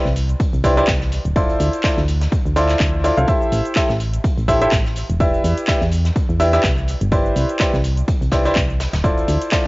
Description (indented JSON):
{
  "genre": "piano house",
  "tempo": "125 BPM",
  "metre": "4/4",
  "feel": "swing 56% on 16ths",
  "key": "unclear",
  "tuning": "A4 = 442 Hz",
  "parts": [
    { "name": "clear grand piano", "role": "riff", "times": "0.0-9.7 s", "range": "E4 to F5", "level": "-19 LUFS", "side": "equal", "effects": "sidechain pumping, cassette tape, tape echo" },
    { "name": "solid FM bass", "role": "bass", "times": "0.1-9.4 s", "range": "D1 to E2", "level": "-19 LUFS", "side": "equal", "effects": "sidechain pumping" },
    { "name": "big rock drum kit", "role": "drums", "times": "0.1-9.7 s", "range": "hi-hat, snare drum", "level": "-34 LUFS", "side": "left 1 dB", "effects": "sidechain pumping on hats, high-pass filter on hats, cassette tape, high-pass filter on snare, high-pass filter on room" },
    { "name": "house drum kit", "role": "drums", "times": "0.1-9.6 s", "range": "handclaps, hi-hat, shaker", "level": "-26 LUFS", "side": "equal", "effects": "overdrive, cassette tape" },
    { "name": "electronic kick drum", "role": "drums", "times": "0.4-9.6 s", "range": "none", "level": "-20 LUFS", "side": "equal", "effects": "overdrive, cassette tape" }
  ],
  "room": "little or no reverb",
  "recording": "home recording on cassette, nothing above 7.6 kHz",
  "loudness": "-15 LUFS",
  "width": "side -22 dB against mid",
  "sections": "0.0-9.7 A section",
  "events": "none",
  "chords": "0.0 Cmaj9; 1.4 Dm9; 3.3 Am7; 5.2 Em7; 6.9 Cmaj9; 9.0 Dm9",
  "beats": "0.40 0.88 | 1.36 1.84 2.32 2.80 | 3.28 3.76 4.24 4.72 | 5.20 5.68 6.16 6.64 | 7.12 7.60 8.08 8.56 | 9.04 9.52"
}